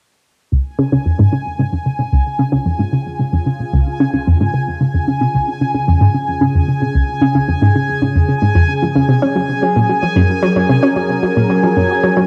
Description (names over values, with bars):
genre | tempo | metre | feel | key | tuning
ambient | 112 BPM | 4/4 | straight | unclear | A4 = 440 Hz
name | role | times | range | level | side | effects
sweeping resonant pad | sustained chords | 0.5-12.3 s | Db3 to Bb4 | -23 LUFS | equal | chorus, cassette tape
analog pluck | riff | 0.5-12.2 s | Db2 to Db4 | -16 LUFS | equal | chorus, cassette tape, delay
bubbling stepped-filter texture | texture | 0.9-12.3 s | Ab5 | -24 LUFS | equal | chorus, built-in reverb, cassette tape
room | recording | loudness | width
wet spring reverb, RT60 1.9 s, digital ambience | home recording on cassette | -15 LUFS | mono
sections
0.5-12.3 A section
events
fade-in on analog synth pad 0.5-12.3; filter sweep on synth arpeggio sound 0.5-12.3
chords
0.5 Db; 9.1 Gbadd9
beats
| 0.52 1.06 1.59 2.13 | 2.66 3.20 3.73 4.27 | 4.81 5.34 5.88 6.41 | 6.95 7.49 8.02 8.56 | 9.09 9.63 10.16 10.70 | 11.23 11.77